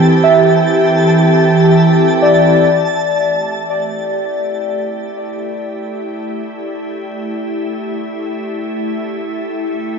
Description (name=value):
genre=ambient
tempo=free time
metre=none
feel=none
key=A minor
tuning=A4 = 438 Hz
part: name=soft additive organ-like pad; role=sustained chords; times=0.0-10.0 s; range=E3 to E5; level=-14 LUFS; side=equal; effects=ensemble chorus, built-in reverb
part: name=twinkling granular texture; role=texture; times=0.0-2.8 s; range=A5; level=-22 LUFS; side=right 2 dB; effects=built-in reverb
part: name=muted felt-like synth keys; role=arpeggios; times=0.2-10.0 s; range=D5 to E5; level=-16 LUFS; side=equal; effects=chorus, tape echo
room=wet concert hall reverb, RT60 2.2 s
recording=dark, warm production, nothing above 7.7 kHz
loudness=-12 LUFS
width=side -6 dB against mid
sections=0.0-2.7 A section; 2.7-10.0 B section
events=fade-in on ambient pad 2.7-10.0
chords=0.0 Am7/E; 2.7 Am7